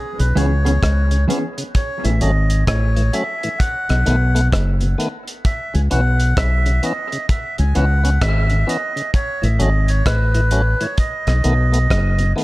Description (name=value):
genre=dub reggae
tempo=65 BPM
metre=4/4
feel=swing 63% on 16ths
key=C# minor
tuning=A4 = 441 Hz
part: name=melodica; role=melody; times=0.0-12.3 s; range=G#4 to G#5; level=-23 LUFS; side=right 1 dB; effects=dub echo
part: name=tonewheel organ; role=accompaniment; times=0.2-12.4 s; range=A2 to C#4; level=-25 LUFS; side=left 1 dB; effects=overdrive
part: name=fingered electric bass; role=bass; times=0.2-12.3 s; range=F#1 to C#2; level=-16 LUFS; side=equal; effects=none
part: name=cloth-damped thuddy drum kit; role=drums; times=0.2-12.4 s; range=hi-hat, kick drum, rim click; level=-21 LUFS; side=equal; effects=none
part: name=mellow electric guitar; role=accompaniment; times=0.4-1.4 s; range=E3 to G#4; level=-25 LUFS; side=right 1 dB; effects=dub echo
room=studio reverb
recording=dark, warm production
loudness=-15 LUFS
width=side -19 dB against mid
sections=0.0-12.4 A section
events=none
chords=0.0 C#m7; 1.7 A6; 3.6 B7; 5.4 C#m7; 9.1 A6; 11.0 B7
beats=0.82 | 1.75 2.67 3.60 4.52 | 5.44 6.37 7.29 8.21 | 9.13 10.06 10.98 11.90